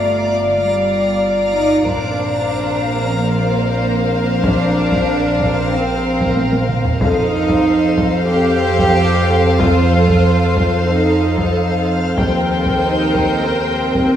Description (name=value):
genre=cinematic, suspense film score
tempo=93 BPM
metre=4/4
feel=straight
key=unclear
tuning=A4 = 440 Hz
part: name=warm studio violin section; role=melody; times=0.0-14.2 s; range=F5 to G5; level=-24 LUFS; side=left 2 dB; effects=none
part: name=warm chamber violin section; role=second line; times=0.0-14.2 s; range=C5 to D5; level=-25 LUFS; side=left 4 dB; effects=none
part: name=dark symphonic viola section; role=accompaniment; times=0.0-14.2 s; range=A4 to D5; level=-24 LUFS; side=right 2 dB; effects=none
part: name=backwards swelling texture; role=sustained chords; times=0.0-14.2 s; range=A4 to Bb5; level=-25 LUFS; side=equal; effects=built-in reverb
part: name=dark French horn section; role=sustained chords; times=0.0-14.2 s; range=C4 to D5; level=-22 LUFS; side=left 4 dB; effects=none
part: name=rich symphonic cello section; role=bass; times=0.0-14.2 s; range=G3 to G4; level=-19 LUFS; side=right 2 dB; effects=none
part: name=warm studio double bass section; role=bass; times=0.0-14.2 s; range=G1 to F2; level=-20 LUFS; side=right 2 dB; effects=none
part: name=bowed-like drone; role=drone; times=0.0-14.2 s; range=G1 to F2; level=-23 LUFS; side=equal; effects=built-in reverb
part: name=solo taiko drums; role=drums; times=1.9-14.2 s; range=none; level=-22 LUFS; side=equal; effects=none
room=wet recital hall reverb, RT60 1.7 s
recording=recorded in a church or concert hall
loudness=-13 LUFS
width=side -10 dB against mid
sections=0.0-14.2 A section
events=drum fill 6.4-7.0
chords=0.0 Gm7; 1.9 Bbadd9; 7.0 F7; 12.2 Eb6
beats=0.57 1.21 | 1.86 2.50 3.15 3.79 | 4.44 5.08 5.73 6.37 | 7.02 7.67 8.31 8.96 | 9.60 10.24 10.89 11.54 | 12.18 12.83 13.47 14.12